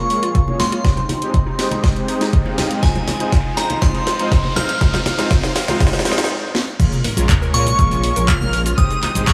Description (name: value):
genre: progressive house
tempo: 121 BPM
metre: 4/4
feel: straight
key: unclear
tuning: A4 = 441 Hz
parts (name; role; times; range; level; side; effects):
- glassy synth bell; melody; 0.0-9.3 s; Ab5 to F6; -25 LUFS; equal; chorus, sidechain pumping, low-pass filter, digital delay
- lush unison pad; sustained chords; 0.0-9.3 s; Ab3 to F5; -30 LUFS; equal; chorus, phaser, sidechain pumping
- glassy wavetable pluck; arpeggios; 0.0-9.3 s; Eb4 to Bb4; -31 LUFS; equal; chorus, sidechain pumping, digital delay
- soft supersaw; stabs; 0.0-9.2 s; Ab3 to F5; -28 LUFS; equal; sidechain pumping, low-pass filter, digital delay
- dark detuned saw bass; bass; 0.0-9.2 s; F1 to Bb2; -27 LUFS; equal; none
- riser and sub drop; sound effects; 1.4-8.8 s; none; -30 LUFS; equal; none
- house drum kit; drums; 0.1-9.3 s; crash cymbal, handclaps, hi-hat, shaker, snare drum; -25 LUFS; equal; sidechain pumping on hats, sidechain pumping on cymbals, sidechain pumping on perc
- electronic kick drum; drums; 0.3-9.3 s; none; -19 LUFS; equal; none
- congas; percussion; 0.5-9.3 s; none; -28 LUFS; equal; sidechain pumping on perc
- dark chamber violin section; second line; 7.5-9.3 s; Db6 to F6; -32 LUFS; equal; sidechain pumping, digital delay
room: light reverb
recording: none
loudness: -17 LUFS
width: mono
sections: 0.0-6.8 A section; 6.8-9.3 B section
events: build-up 0.0-6.8; drum fill 0.0-6.3, 6.5; filter sweep on synth arpeggio sound 0.0-6.8; filter sweep on supersaw synth 0.0-6.8; filter sweep on synth bell 0.0-6.8; riser 1.4-6.3; stop 6.3-6.8; drop 6.8-9.3; impact 6.8-8.8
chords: 0.0 Bbm7; 0.8 Abmaj7; 2.8 Fm7; 6.8 Bbm7; 8.8 Abmaj7